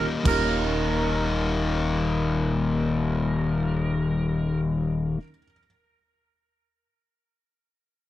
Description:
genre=blues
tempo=120 BPM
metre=4/4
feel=swing 68% on 8ths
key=Eb mixolydian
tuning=A4 = 440 Hz
part: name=clean lap steel guitar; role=melody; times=0.0-4.6 s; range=Bb4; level=-32 LUFS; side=right 4 dB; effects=tape echo
part: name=dark upright piano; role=accompaniment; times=0.0-5.6 s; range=Eb2 to Db7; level=-35 LUFS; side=right 5 dB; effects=none
part: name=overdriven electric guitar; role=riff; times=0.0-5.2 s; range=Eb2 to Eb4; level=-24 LUFS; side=left 3 dB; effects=none
part: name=upright bass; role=bass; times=0.0-5.1 s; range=Eb1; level=-31 LUFS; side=equal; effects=none
room=little or no reverb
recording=none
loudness=-22 LUFS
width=side -14 dB against mid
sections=0.0-3.8 A section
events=none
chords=0.0 Eb7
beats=0.34 0.83 1.33 | 1.83 2.33 2.83 3.33

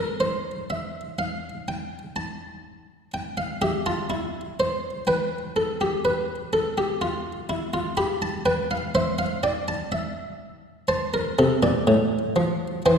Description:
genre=classical, baroque-style 3-part fugue for harpsichord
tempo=62 BPM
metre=4/4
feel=straight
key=F major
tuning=A4 = 440 Hz
part: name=buff-stop harpsichord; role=solo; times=0.0-13.0 s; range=A2 to B5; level=-23 LUFS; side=equal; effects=none
room=wet scoring stage reverb, RT60 1.8 s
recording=heard from further back in the room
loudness=-23 LUFS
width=side -6 dB against mid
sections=0.0-13.0 A section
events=none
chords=0.0 N.C.; 3.1 C; 5.1 G; 7.0 G7; 9.0 C; 10.9 F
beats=0.20 1.18 2.16 | 3.14 4.11 5.08 6.05 | 7.02 7.99 8.96 9.93 | 10.91 11.89 12.86

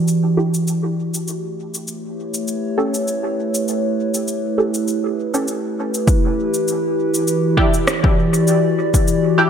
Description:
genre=ambient dub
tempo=100 BPM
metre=4/4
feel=swing 55% on 16ths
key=E dorian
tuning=A4 = 440 Hz
part: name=warbly tape-like pad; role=sustained chords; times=0.0-9.5 s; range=E3 to D5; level=-18 LUFS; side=equal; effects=chorus, built-in reverb
part: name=electronic cabasa and rim click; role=drums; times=0.1-9.2 s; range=none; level=-23 LUFS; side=left 1 dB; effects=overdrive, dub echo
part: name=filtered dub chord stab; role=stabs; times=0.4-9.5 s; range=C#4 to A4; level=-22 LUFS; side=right 2 dB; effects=phaser, ensemble chorus, dub echo
part: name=electronic kick drum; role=drums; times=6.1-9.1 s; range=none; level=-16 LUFS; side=equal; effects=overdrive
room=moderate echo chamber reverb, RT60 2.1 s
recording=none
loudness=-16 LUFS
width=side -8 dB against mid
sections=0.0-6.1 A section; 6.1-9.5 B section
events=filter sweep on synth stab 0.0-6.1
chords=0.0 Em7; 1.3 A7; 6.1 Em7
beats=0.08 0.68 | 1.28 1.88 2.48 3.08 | 3.68 4.28 4.88 5.48 | 6.08 6.68 7.28 7.88 | 8.48 9.08

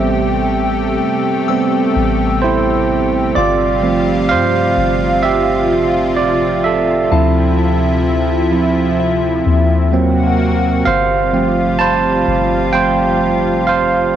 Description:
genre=contemporary R&B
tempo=64 BPM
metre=4/4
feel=straight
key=unclear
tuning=A4 = 440 Hz
part: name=barky tine electric piano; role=accompaniment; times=0.0-14.2 s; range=F3 to A5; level=-14 LUFS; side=right 5 dB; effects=slow stereo tremolo, cassette tape
part: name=lush unison pad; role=sustained chords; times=0.0-14.2 s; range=C3 to G4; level=-18 LUFS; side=left 3 dB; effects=chorus, cassette tape
part: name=soft 808-style bass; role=bass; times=0.0-14.2 s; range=G1 to G2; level=-20 LUFS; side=left 3 dB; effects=none
part: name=soft synth bell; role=texture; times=1.5-14.1 s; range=E5 to E6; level=-28 LUFS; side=left 11 dB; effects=chorus, cassette tape, tape echo
room=light reverb, digital ambience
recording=home recording on cassette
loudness=-12 LUFS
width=side -10 dB against mid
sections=0.0-14.2 A section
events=tine electric piano solo 0.0-14.2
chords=0.0 Am9; 3.4 G7sus4; 7.1 Dm9; 9.9 Ebm6; 10.9 G7sus4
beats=0.55 1.49 2.43 | 3.36 4.30 5.24 6.18 | 7.11 8.05 8.99 9.93 | 10.86 11.80 12.74 13.68

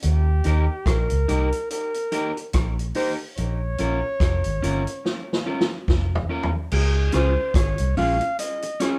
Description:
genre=roots reggae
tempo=72 BPM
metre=4/4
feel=swing 58% on 16ths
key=Eb mixolydian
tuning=A4 = 435 Hz
part: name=warm flugelhorn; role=melody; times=0.0-9.0 s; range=G4 to F5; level=-30 LUFS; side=equal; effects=none
part: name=vintage muted fingered electric bass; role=bass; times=0.0-8.2 s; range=F1 to Eb2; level=-24 LUFS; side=equal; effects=none
part: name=vintage drum kit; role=drums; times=0.0-9.0 s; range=crash cymbal, hi-hat, kick drum, rim click, snare drum, toms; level=-27 LUFS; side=equal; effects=none
part: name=electric guitar at the edge of break-up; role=accompaniment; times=0.5-9.0 s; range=Db4 to Bb4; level=-31 LUFS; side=equal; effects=tape echo
room=light reverb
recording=band playing live in one room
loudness=-23 LUFS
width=mono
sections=0.0-6.7 A section; 6.7-9.0 B section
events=drum fill 5.0-6.7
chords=0.0 Eb; 3.4 Bbm; 6.7 Db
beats=| 0.03 0.86 1.70 2.54 | 3.37 4.21 5.04 5.88 | 6.72 7.55 8.39

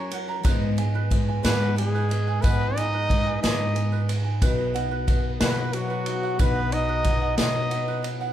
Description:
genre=indie folk with a building arrangement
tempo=61 BPM (dotted quarters)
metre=6/8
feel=straight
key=unclear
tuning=A4 = 439 Hz
part: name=mellow trumpet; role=melody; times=0.0-8.1 s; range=F#4 to D#5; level=-28 LUFS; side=equal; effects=none
part: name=clear trombone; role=second line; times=0.0-8.1 s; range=F#3 to D#4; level=-33 LUFS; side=left 3 dB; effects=none
part: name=felt-muted upright piano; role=accompaniment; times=0.0-8.3 s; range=F#1 to E#5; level=-37 LUFS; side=equal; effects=none
part: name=picked twelve-string acoustic guitar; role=accompaniment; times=0.0-8.3 s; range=G#2 to B4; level=-32 LUFS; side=left 3 dB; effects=none
part: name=tenor ukulele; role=arpeggios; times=0.0-8.3 s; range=B4 to A#5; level=-33 LUFS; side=right 7 dB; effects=none
part: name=upright bass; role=bass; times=0.0-8.3 s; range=B1 to F#3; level=-27 LUFS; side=right 1 dB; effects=none
part: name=unplugged drum kit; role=drums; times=0.1-8.2 s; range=kick drum, ride cymbal, snare drum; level=-26 LUFS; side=equal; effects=none
part: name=tambourine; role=percussion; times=0.3-8.3 s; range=none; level=-43 LUFS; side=right 6 dB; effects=none
room=light reverb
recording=band playing live in one room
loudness=-21 LUFS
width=side -11 dB against mid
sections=0.0-8.3 A section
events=none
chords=0.4 G#m; 4.4 B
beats=| 0.45 1.44 | 2.44 3.43 | 4.42 5.41 | 6.40 7.38

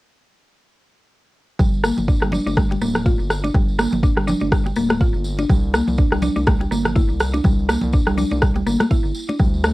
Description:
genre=afro house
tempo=123 BPM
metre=4/4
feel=swing 56% on 16ths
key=G dorian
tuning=A4 = 440 Hz
part: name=mallet-like synth pluck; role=arpeggios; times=1.6-9.7 s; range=G3 to F4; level=-22 LUFS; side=equal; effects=chorus, sidechain pumping, cassette tape, analog delay
part: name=round analog bass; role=bass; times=1.6-9.7 s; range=D1 to D2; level=-25 LUFS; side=equal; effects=sidechain pumping
part: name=electronic kick drum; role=drums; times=1.6-9.5 s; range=none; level=-18 LUFS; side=equal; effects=cassette tape
part: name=congas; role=percussion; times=1.6-9.7 s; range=none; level=-26 LUFS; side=left 1 dB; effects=none
part: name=tambourine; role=percussion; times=1.6-9.7 s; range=none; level=-37 LUFS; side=equal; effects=none
part: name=electronic rim click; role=drums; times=1.8-9.7 s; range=none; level=-21 LUFS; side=equal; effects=cassette tape
room=light reverb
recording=home recording on cassette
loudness=-16 LUFS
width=side -19 dB against mid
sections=1.6-9.7 A section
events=none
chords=1.6 G5; 5.5 C5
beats=| 1.59 2.08 2.57 3.06 | 3.55 4.03 4.52 5.01 | 5.50 5.99 6.47 6.96 | 7.45 7.94 8.42 8.91 | 9.40

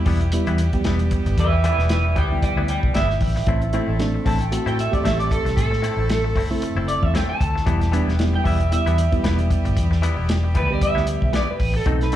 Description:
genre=straight-eighth soul blues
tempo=114 BPM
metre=4/4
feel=swing 56% on 16ths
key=E minor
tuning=A4 = 440 Hz
part: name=electric guitar through a small old amp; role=second line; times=0.0-12.1 s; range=E4 to A5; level=-25 LUFS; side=right 2 dB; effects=analog chorus, slapback echo
part: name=reed electric piano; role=accompaniment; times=0.0-12.2 s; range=G3 to G4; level=-26 LUFS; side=right 3 dB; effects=slapback echo
part: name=brilliant horn section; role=sustained chords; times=0.0-12.2 s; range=G3 to A4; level=-32 LUFS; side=equal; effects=none
part: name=direct-recorded clean electric guitar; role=stabs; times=0.1-12.2 s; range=A2 to E4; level=-30 LUFS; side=left 8 dB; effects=slapback echo
part: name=vintage muted fingered electric bass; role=bass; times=0.1-12.2 s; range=E1 to A2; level=-21 LUFS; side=equal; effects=none
part: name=warm soul drum kit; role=drums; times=0.1-12.2 s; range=hi-hat, kick drum, snare drum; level=-24 LUFS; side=equal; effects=none
room=little or no reverb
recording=live gig heard through the venue's PA, club reverb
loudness=-18 LUFS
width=side -12 dB against mid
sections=0.0-12.2 A section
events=clean electric guitar solo 0.0-12.2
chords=0.0 Em; 3.5 Am; 7.7 Em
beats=0.33 0.85 | 1.38 1.90 2.42 2.95 | 3.47 4.00 4.52 5.05 | 5.57 6.10 6.62 7.14 | 7.67 8.19 8.72 9.24 | 9.76 10.29 10.81 11.34 | 11.86

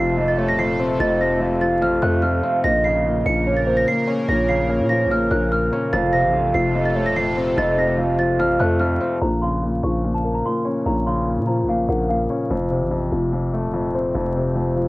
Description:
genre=hip hop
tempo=146 BPM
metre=4/4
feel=half-time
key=Bb harmonic minor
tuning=A4 = 437 Hz
part: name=celesta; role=melody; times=0.0-12.5 s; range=F5 to Db7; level=-25 LUFS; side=right 1 dB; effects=low-pass filter, cassette tape
part: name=hollow clarinet-like synth lead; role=second line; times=0.0-9.2 s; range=C5 to F5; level=-23 LUFS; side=right 2 dB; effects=chorus, cassette tape, analog delay
part: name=felt-muted upright piano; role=accompaniment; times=0.0-14.9 s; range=F2 to Db4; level=-21 LUFS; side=left 1 dB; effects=low-pass filter, cassette tape
part: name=sweeping resonant pad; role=sustained chords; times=0.0-9.2 s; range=C3 to Bb4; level=-29 LUFS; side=right 1 dB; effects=chorus, cassette tape
part: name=growling 808-style bass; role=bass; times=0.0-14.9 s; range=Eb1 to Bb2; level=-24 LUFS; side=equal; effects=none
room=light reverb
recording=home recording on cassette, vinyl crackle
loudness=-18 LUFS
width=side -19 dB against mid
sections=0.0-9.2 A section; 9.2-14.9 B section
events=none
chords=0.0 F; 2.6 Bbm; 5.9 F; 9.2 Bbm; 12.5 F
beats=0.18 0.59 | 1.00 1.41 1.82 2.23 | 2.64 3.05 3.46 3.87 | 4.29 4.70 5.11 5.52 | 5.93 6.34 6.75 7.16 | 7.57 7.98 8.39 8.81 | 9.22 9.63 10.04 10.45 | 10.86 11.27 11.68 12.09 | 12.50 12.91 13.33 13.74 | 14.15 14.56

